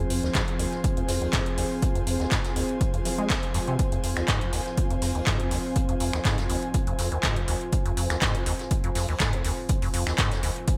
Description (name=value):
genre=acid house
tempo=122 BPM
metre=4/4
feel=swing 53% on 16ths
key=F minor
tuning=A4 = 440 Hz
part: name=warbly tape-like pad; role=sustained chords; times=0.0-10.8 s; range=F3 to Ab4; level=-36 LUFS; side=equal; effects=chorus, built-in reverb, sidechain pumping
part: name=deep acid bass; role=riff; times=0.0-10.5 s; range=Eb2 to Ab3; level=-32 LUFS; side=equal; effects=lush chorus, digital delay
part: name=airy breathy pad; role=texture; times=0.0-10.8 s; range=F4 to Ab5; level=-36 LUFS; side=equal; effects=chorus, sidechain pumping
part: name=booming analog drum machine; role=drums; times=0.1-10.8 s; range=finger snaps, handclaps, hi-hat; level=-33 LUFS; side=equal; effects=gated reverb
part: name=jazz brush drum kit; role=drums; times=0.1-10.8 s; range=hi-hat, snare drum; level=-42 LUFS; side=equal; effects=none
part: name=electronic kick drum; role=drums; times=0.3-10.8 s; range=none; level=-30 LUFS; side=equal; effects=none
room=light reverb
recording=bright 1980s-style digital production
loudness=-26 LUFS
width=mono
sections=0.0-10.8 A section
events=none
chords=0.0 Fm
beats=0.35 0.84 1.33 | 1.82 2.32 2.81 3.30 | 3.79 4.28 4.78 5.27 | 5.76 6.25 6.74 7.23 | 7.73 8.22 8.71 9.20 | 9.69 10.19 10.68